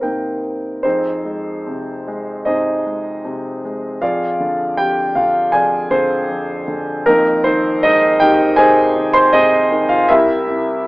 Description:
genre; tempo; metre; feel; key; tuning
classical, lyrical solo piano; 78 BPM; 4/4; rubato; F dorian; A4 = 440 Hz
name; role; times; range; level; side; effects
warm concert grand piano; solo; 0.0-10.9 s; C2 to C6; -14 LUFS; equal; none
room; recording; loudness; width
light reverb; AM radio sound; -13 LUFS; side -21 dB against mid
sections
0.8-10.9 A section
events
grand piano fill 0.0-0.8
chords
0.0 Cm7; 0.8 Fm7; 4.0 Fm69; 7.1 Fm7; 10.1 C7

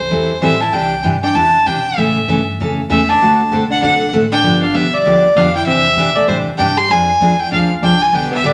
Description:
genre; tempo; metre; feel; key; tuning
country, western swing; 195 BPM; 4/4; swing 61% on 8ths; C major; A4 = 440 Hz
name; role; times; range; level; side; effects
clear fiddle; melody; 0.0-8.5 s; C5 to C6; -16 LUFS; equal; none
upright bass; bass; 0.0-8.5 s; G1 to B2; -28 LUFS; equal; none
picked steel-string acoustic guitar; accompaniment; 0.1-8.5 s; C3 to A4; -19 LUFS; equal; none
archtop guitar, miked and amplified; second line; 0.4-8.5 s; G3 to G4; -24 LUFS; equal; none
room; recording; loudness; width
wet studio reverb, RT60 0.9 s; none; -14 LUFS; mono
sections
0.0-8.5 A section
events
none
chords
0.0 Am7; 0.7 Cadd9; 2.0 A; 3.2 D7; 4.4 G7; 5.7 Cadd9; 6.9 Fm6

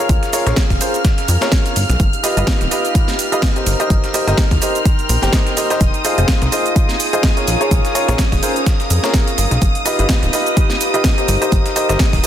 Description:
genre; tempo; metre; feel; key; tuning
piano house; 126 BPM; 4/4; swing 56% on 16ths; unclear; A4 = 440 Hz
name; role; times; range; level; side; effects
string machine, violins; sustained chords; 0.0-12.3 s; Eb6 to F6; -23 LUFS; equal; ensemble chorus, sidechain pumping
clear grand piano; riff; 0.0-12.3 s; F4 to G5; -20 LUFS; equal; sidechain pumping, tape echo
airy breathy pad; texture; 0.0-12.3 s; Db4 to C6; -24 LUFS; right 1 dB; chorus, sidechain pumping
plucky analog bass; bass; 0.1-12.2 s; D1 to F2; -17 LUFS; equal; sidechain pumping
dusty soul sampler-style drum kit; drums; 0.1-12.3 s; hi-hat, snare drum; -30 LUFS; left 1 dB; none
electronic kick drum; drums; 0.1-12.2 s; none; -15 LUFS; equal; none
house drum kit; drums; 0.1-12.3 s; hi-hat, shaker, snare drum; -22 LUFS; right 2 dB; none
room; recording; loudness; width
light reverb, digital ambience; dense, heavily limited modern master; -13 LUFS; side -10 dB against mid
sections
0.0-12.3 A section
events
none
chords
0.0 Bbm7; 1.8 G7b13; 3.7 Cm7; 5.8 Fm7; 9.4 G7b13; 11.3 Cm7/G

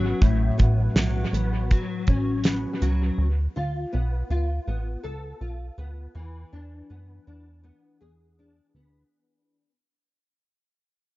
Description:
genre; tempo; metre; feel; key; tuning
indie pop, bedroom pop; 81 BPM; 4/4; straight; unclear; A4 = 438 Hz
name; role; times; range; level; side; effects
nylon-string guitar; accompaniment; 0.0-9.7 s; A2 to A4; -28 LUFS; left 1 dB; ensemble chorus, vibrato effect
plucky analog bass; bass; 0.0-9.0 s; G#1 to F#2; -26 LUFS; equal; none
damped 70s drum kit; drums; 0.2-3.0 s; hi-hat, kick drum, snare drum; -22 LUFS; equal; dub echo
room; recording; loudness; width
small room ambience; echo-heavy mix, cassette tape, nothing above 7.5 kHz; -22 LUFS; side -18 dB against mid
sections
0.0-9.1 A section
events
fade-out 0.0-9.1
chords
0.0 A69; 3.2 Dm6; 6.2 E7

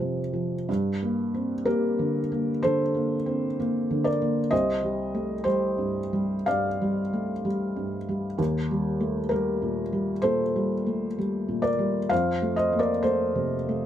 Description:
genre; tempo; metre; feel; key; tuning
neoclassical minimalist piano; 63 BPM; 4/4; uneven beats, rubato; G minor; A4 = 440 Hz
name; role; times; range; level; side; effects
felt-muted upright piano; solo; 0.0-13.9 s; C2 to F5; -24 LUFS; equal; none
room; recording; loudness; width
little or no reverb; close, detailed microphones; -24 LUFS; side -10 dB against mid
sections
0.7-13.9 A section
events
none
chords
0.0 F; 0.7 Gm; 4.5 Cm; 8.4 Eb; 12.1 F

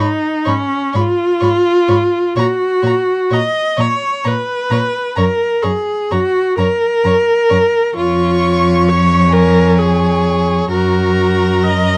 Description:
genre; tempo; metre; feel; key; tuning
classical, slow romantic movement for string quartet; 43 BPM (dotted quarters); 6/8; rubato; F# major; A4 = 441 Hz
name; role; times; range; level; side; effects
warm violin; melody; 0.0-12.0 s; G#5 to C#6; -26 LUFS; equal; none
rich violin; second line; 0.0-12.0 s; A#4 to C#5; -24 LUFS; equal; none
clear viola; accompaniment; 0.0-12.0 s; C#4 to D#5; -16 LUFS; equal; none
clear cello; bass; 0.0-12.0 s; E#2 to A#2; -18 LUFS; equal; none
room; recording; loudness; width
light reverb; dark, warm production; -14 LUFS; mono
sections
0.0-12.0 A section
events
none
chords
0.0 C#/G#; 2.4 F#/A#; 5.2 F#; 8.0 C#/E#; 10.7 F#

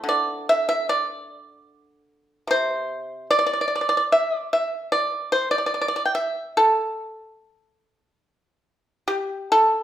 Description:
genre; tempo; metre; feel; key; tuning
chinese traditional, Chinese solo plucked strings; 69-76 BPM; 4/4; rubato; A yu mode; A4 = 441 Hz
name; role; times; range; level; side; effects
pipa; solo; 0.0-9.8 s; C3 to G5; -20 LUFS; right 1 dB; none
room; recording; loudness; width
moderate large studio reverb, RT60 0.9 s; band playing live in one room; -20 LUFS; side -11 dB against mid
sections
0.0-9.8 A section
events
none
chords
none

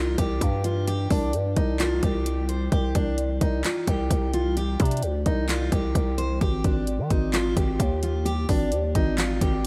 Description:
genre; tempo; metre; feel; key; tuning
hip hop, trap; 130 BPM; 4/4; half-time; C minor; A4 = 441 Hz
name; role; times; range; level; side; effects
picked steel-string acoustic guitar; melody; 0.0-9.7 s; D4 to C5; -31 LUFS; equal; analog delay
growling 808-style bass; bass; 0.0-9.7 s; Ab1 to Eb3; -28 LUFS; equal; none
trap drum kit; drums; 0.2-9.7 s; handclaps, hi-hat, kick drum; -28 LUFS; equal; none
room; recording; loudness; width
light reverb; none; -24 LUFS; mono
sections
0.0-9.7 A section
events
none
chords
0.0 C5; 6.4 Ab5

